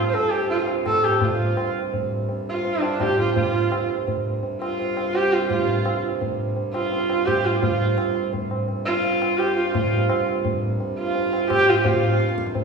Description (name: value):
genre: indian classical, Hindustani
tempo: 169 BPM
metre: 3/4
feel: straight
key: unclear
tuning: A4 = 439 Hz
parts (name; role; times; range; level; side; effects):
- hand-pumped harmonium; second line; 0.0-12.4 s; F4 to A4; -32 LUFS; right 6 dB; none
- pedal harmonium; drone; 0.0-12.6 s; C2 to G2; -31 LUFS; right 1 dB; none
- dark sarangi; melody; 0.1-12.4 s; F4 to C5; -22 LUFS; right 1 dB; none
- tabla; percussion; 0.1-12.6 s; none; -24 LUFS; right 1 dB; none
room: wet scoring stage reverb, RT60 1.6 s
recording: recorded in a church or concert hall, small room ambience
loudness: -20 LUFS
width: side -5 dB against mid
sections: 0.0-1.2 A section; 1.2-9.7 A section; 9.7-12.6 B section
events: none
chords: none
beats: | 0.14 0.50 0.86 | 1.22 1.57 1.93 | 2.29 2.65 3.00 | 3.36 3.71 4.07 | 4.43 4.78 5.14 | 5.50 5.85 6.21 | 6.56 6.91 7.27 | 7.62 7.98 8.33 | 8.68 9.04 9.39 | 9.74 10.09 10.45 | 10.80 11.15 11.50 | 11.85 12.20 12.55